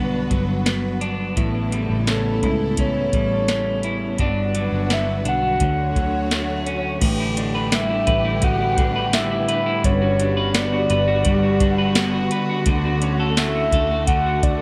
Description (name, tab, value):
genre	dream pop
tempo	85 BPM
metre	4/4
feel	straight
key	A mixolydian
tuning	A4 = 441 Hz
part	warm studio string section	sustained chords	0.0-14.6 s	C#3 to C#5	-28 LUFS	equal	none
part	electric guitar at the edge of break-up	arpeggios	0.0-14.6 s	G2 to B4	-26 LUFS	equal	lush chorus, digital delay
part	vintage muted fingered electric bass	bass	0.0-14.6 s	G1 to D2	-28 LUFS	equal	none
part	soft vintage rhythm box	drums	0.3-14.6 s	crash cymbal, hi-hat, kick drum, snare drum, tambourine	-25 LUFS	equal	none
part	soft octave-layered synth lead	melody	2.1-14.6 s	A4 to F#5	-26 LUFS	equal	chorus, phaser
room	moderate plate reverb, RT60 2.9 s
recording	bright 1980s-style digital production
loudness	-20 LUFS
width	mono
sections	0.0-7.0 A section; 7.0-14.6 B section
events	none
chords	0.0 Gmaj7; 1.4 A7; 4.2 Gmaj7; 5.6 Dmaj7; 7.0 A9sus4; 9.8 Gmaj7; 12.7 Dmaj7